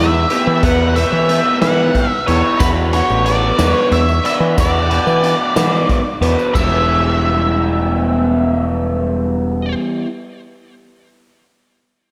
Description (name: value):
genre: psychedelic rock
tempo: 61 BPM (dotted quarters)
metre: 6/8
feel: straight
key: E minor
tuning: A4 = 440 Hz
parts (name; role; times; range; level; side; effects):
- octave-fuzz lead guitar; melody; 0.0-9.7 s; B4 to F#5; -21 LUFS; equal; distortion, delay
- raw garage guitar; riff; 0.0-10.1 s; E3 to B4; -20 LUFS; equal; overdrive, flanger
- growling picked electric bass; bass; 0.0-9.7 s; E1 to E3; -19 LUFS; equal; overdrive
- raw garage drum kit; drums; 0.3-6.7 s; crash cymbal, hi-hat, kick drum, snare drum; -24 LUFS; equal; none
- tambourine; percussion; 2.6-6.9 s; none; -40 LUFS; equal; none
room: wet lush hall reverb, RT60 2.3 s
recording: dreamy mix soaked in reverb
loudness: -15 LUFS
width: mono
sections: 0.0-6.5 A section; 6.5-10.5 B section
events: none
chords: 0.0 Emadd9; 2.6 Bm; 6.5 Em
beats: | 0.63 1.62 | 2.60 3.59 | 4.58 5.56 | 6.55 7.54 | 8.52 9.51